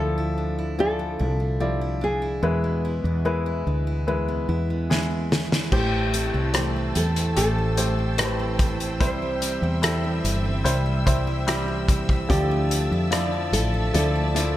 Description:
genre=pop ballad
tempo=73 BPM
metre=4/4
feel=straight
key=A minor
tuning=A4 = 441 Hz
part: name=nylon-string guitar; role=melody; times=0.0-14.6 s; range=G4 to C5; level=-28 LUFS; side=equal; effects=none
part: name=clear baby grand piano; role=accompaniment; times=0.0-14.6 s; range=A2 to D5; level=-28 LUFS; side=left 3 dB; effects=none
part: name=picked steel-string acoustic guitar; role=arpeggios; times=0.0-14.6 s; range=E2 to E4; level=-32 LUFS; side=right 4 dB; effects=tape echo
part: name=woody fretless electric bass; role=bass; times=0.0-14.6 s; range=G1 to F2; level=-25 LUFS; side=equal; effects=none
part: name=loose indie drum kit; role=drums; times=4.9-14.5 s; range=crash cymbal, hi-hat, kick drum, rim click, snare drum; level=-25 LUFS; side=equal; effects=none
part: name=warm studio string section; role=sustained chords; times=5.7-14.6 s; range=C5 to E6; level=-33 LUFS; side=right 2 dB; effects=none
room=small room ambience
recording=none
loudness=-21 LUFS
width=side -13 dB against mid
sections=0.0-5.7 A section; 5.7-14.6 B section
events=drum fill 4.9-5.7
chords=0.0 Dmadd9; 2.4 E; 5.7 Am7; 9.0 C; 12.3 Dmadd9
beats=0.79 1.61 | 2.44 3.26 4.08 4.90 | 5.72 6.54 7.37 8.19 | 9.01 9.83 10.65 11.48 | 12.30 13.12 13.94

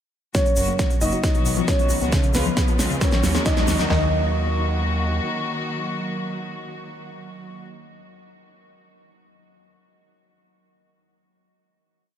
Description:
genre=uplifting trance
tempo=135 BPM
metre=4/4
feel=straight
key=Eb minor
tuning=A4 = 442 Hz
part: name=dark grand piano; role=second line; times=0.3-7.6 s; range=Cb4 to Eb5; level=-27 LUFS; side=equal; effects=dub echo
part: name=dark studio string section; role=sustained chords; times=0.3-7.6 s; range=Db3 to Gb4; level=-28 LUFS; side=equal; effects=sidechain pumping
part: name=analog pluck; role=arpeggios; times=0.3-4.1 s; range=Db2 to Bb3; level=-28 LUFS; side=left 3 dB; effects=chorus, sidechain pumping, dub echo
part: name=big-room dance drum kit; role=drums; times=0.3-4.0 s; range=handclaps, kick drum, snare drum, toms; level=-21 LUFS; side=equal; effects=none
part: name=big-room dance drum kit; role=drums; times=0.3-3.9 s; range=hi-hat, snare drum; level=-29 LUFS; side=right 1 dB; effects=none
part: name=tube shaker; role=percussion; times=0.3-3.9 s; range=none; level=-34 LUFS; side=left 4 dB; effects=none
part: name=riser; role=sound effects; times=1.8-3.9 s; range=none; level=-34 LUFS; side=right 2 dB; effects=none
part: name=gritty driven synth bass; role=bass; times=0.6-5.2 s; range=Gb1 to Eb2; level=-25 LUFS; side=equal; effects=sidechain pumping
room=light reverb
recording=none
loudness=-19 LUFS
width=side -10 dB against mid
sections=0.3-3.9 build; 3.9-7.5 final chord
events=build-up 0.3-3.9; drum fill 0.3-3.9; filter sweep on synth pluck 0.3-3.9; riser 1.8-3.9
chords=0.3 Gb; 1.2 B; 2.1 Db; 3.0 Ebm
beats=| 0.35 0.79 1.24 1.68 | 2.12 2.57 3.01 3.46 | 3.90 4.35 4.79 5.24 | 5.68 6.12 6.57 7.01

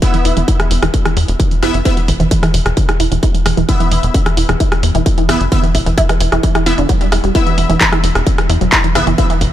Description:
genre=driving peak-time techno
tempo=131 BPM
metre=4/4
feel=straight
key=unclear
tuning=A4 = 440 Hz
part: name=resonant blip pluck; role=riff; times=0.0-9.5 s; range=D3 to E4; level=-18 LUFS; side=right 2 dB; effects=phaser, sidechain pumping, tape echo
part: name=rave stab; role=stabs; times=0.0-9.3 s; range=B3 to E5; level=-20 LUFS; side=equal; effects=chorus, built-in reverb, phaser, cassette tape, sidechain pumping, tape echo
part: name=electronic kick drum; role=drums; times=0.0-9.5 s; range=none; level=-15 LUFS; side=equal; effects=distortion
part: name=techno drum kit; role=drums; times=0.0-9.5 s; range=handclaps, hi-hat, rim click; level=-18 LUFS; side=equal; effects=none
part: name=tight sequencer bass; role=bass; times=0.2-9.5 s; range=E1 to E2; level=-16 LUFS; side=equal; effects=tube saturation, sidechain pumping
room=digital ambience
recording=none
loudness=-11 LUFS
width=side -12 dB against mid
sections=0.0-9.5 A section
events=filter sweep on synth arpeggio sound 0.0-9.5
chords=0.0 E5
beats=| 0.02 0.48 0.94 1.40 | 1.85 2.31 2.77 3.23 | 3.69 4.14 4.60 5.06 | 5.52 5.98 6.43 6.89 | 7.35 7.81 8.27 8.72 | 9.18

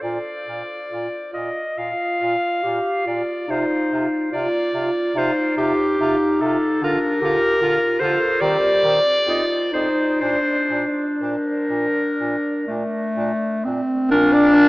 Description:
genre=classical, lyrical piece for single-reed quartet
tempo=60-77 BPM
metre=4/4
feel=rubato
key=Bb major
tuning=A4 = 440 Hz
part: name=clear clarinet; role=melody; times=0.0-14.7 s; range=G4 to F5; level=-21 LUFS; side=equal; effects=none
part: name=clear alto saxophone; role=second line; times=0.0-14.7 s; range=C4 to D5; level=-27 LUFS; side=right 2 dB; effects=none
part: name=warm bass clarinet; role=bass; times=0.0-14.7 s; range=F2 to Eb3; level=-26 LUFS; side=right 1 dB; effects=none
part: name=dark clarinet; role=accompaniment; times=1.8-14.7 s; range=A3 to A4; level=-20 LUFS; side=equal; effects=none
room=wet cathedral reverb, RT60 5.0 s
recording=in a vast, echoing space, small speaker sound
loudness=-18 LUFS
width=side -20 dB against mid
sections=0.0-14.1 A section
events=none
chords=0.0 Bb; 3.5 F5/C; 6.8 Bb/D; 8.4 Cm/Eb; 9.3 F5; 10.2 Bb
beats=| 0.01 0.90 1.76 2.62 | 3.48 4.32 5.16 6.00 | 6.82 7.62 8.42 9.28 | 10.21 11.21 12.20 13.16 | 14.11

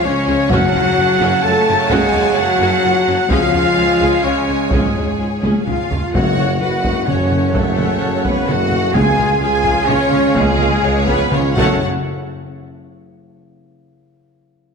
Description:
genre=cinematic, epic orchestral film score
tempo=128 BPM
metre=3/4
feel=straight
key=F# harmonic minor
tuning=A4 = 440 Hz
part: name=clear symphonic violin section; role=melody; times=0.0-11.8 s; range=G#4 to A5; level=-22 LUFS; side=left 3 dB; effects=none
part: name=rich symphonic violin section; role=second line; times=0.0-11.9 s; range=E#4 to A5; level=-26 LUFS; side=left 1 dB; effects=none
part: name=clear symphonic viola section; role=accompaniment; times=0.0-11.8 s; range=C#4 to F#5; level=-26 LUFS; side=right 1 dB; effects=none
part: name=clear trombone section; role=sustained chords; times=0.0-11.8 s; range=C#3 to C#4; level=-26 LUFS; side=right 4 dB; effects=none
part: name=mellow French horn section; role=sustained chords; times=0.0-11.8 s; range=G#3 to A4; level=-20 LUFS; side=left 3 dB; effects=none
part: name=dark trumpet section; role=stabs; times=0.0-11.8 s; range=G#4 to A5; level=-22 LUFS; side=right 2 dB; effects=none
part: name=rich studio cello section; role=bass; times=0.0-11.8 s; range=G#2 to G#4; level=-23 LUFS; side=right 1 dB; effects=none
part: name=rich symphonic double bass section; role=bass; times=0.0-11.8 s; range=C#2 to F#2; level=-24 LUFS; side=right 2 dB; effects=none
part: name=warm tuba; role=bass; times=0.0-11.8 s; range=F#1 to C#2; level=-25 LUFS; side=right 4 dB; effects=none
part: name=taiko ensemble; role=drums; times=0.5-12.5 s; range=none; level=-21 LUFS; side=equal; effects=none
part: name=timpani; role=percussion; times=0.5-1.2, 3.3-4.0, 6.1-6.8, 8.9-11.8 s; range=F#2 to C#3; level=-25 LUFS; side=left 2 dB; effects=none
part: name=large flute ensemble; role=second line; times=5.7-11.8 s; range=G#4 to G#5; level=-24 LUFS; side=equal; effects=none
room=wet scoring stage reverb, RT60 1.9 s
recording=dark, warm production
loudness=-13 LUFS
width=side -5 dB against mid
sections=0.0-6.2 A section; 6.2-11.8 B section; 11.8-13.3 C section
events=drum fill 5.4-6.2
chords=0.0 C#; 0.5 F#m; 3.3 C#; 6.2 F#m; 9.0 C#; 11.6 F#m; 11.8 N.C.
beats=0.04 | 0.51 0.98 1.44 | 1.91 2.37 2.84 | 3.31 3.77 4.25 | 4.72 5.20 5.68 | 6.15 6.62 7.09 | 7.56 8.02 8.49 | 8.95 9.42 9.89 | 10.36 10.83 11.32 | 11.82 12.31

